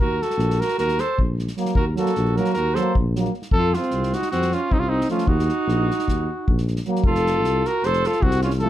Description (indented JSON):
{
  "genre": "balkan folk, Balkan brass band",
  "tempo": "307 BPM (eighths)",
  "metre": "9/8",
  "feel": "straight",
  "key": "Eb dorian sharp4",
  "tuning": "A4 = 441 Hz",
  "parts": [
    { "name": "warm trumpet", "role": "melody", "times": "0.0-8.7 s", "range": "Eb4 to C5", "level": "-24 LUFS", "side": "left 1 dB", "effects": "slapback echo" },
    { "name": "warm alto saxophone", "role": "second line", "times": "0.0-8.7 s", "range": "C4 to A4", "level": "-26 LUFS", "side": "right 6 dB", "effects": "none" },
    { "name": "dark tuba", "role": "bass", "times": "0.0-8.7 s", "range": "F1 to F2", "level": "-23 LUFS", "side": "left 1 dB", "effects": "none" },
    { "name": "unplugged drum kit", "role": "percussion", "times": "0.2-8.6 s", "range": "kick drum, snare drum", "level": "-25 LUFS", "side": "left 1 dB", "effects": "none" },
    { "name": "clear trombone", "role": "accompaniment", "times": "1.6-8.7 s", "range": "A3 to Bb3", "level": "-29 LUFS", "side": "left 6 dB", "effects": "none" },
    { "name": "warm euphonium", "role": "accompaniment", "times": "1.6-8.7 s", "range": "F3 to Gb3", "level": "-26 LUFS", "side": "right 6 dB", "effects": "none" }
  ],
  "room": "moderate studio reverb, RT60 0.5 s",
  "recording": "dark, warm production",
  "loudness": "-19 LUFS",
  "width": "side -12 dB against mid",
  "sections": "0.0-7.0 A section; 7.0-8.7 B section",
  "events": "none",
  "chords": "0.0 Ebm; 3.5 F5; 5.3 Ebm; 7.0 F",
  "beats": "0.18 0.38 0.58 0.77 0.97 1.17 1.36 1.56 | 1.76 1.95 2.15 2.35 2.54 2.74 2.93 3.13 3.33 | 3.52 3.72 3.91 4.11 4.30 4.50 4.69 4.89 5.08 | 5.28 5.48 5.67 5.87 6.06 6.26 6.45 6.65 6.84 | 7.04 7.23 7.43 7.62 7.82 8.01 8.20 8.40 8.59"
}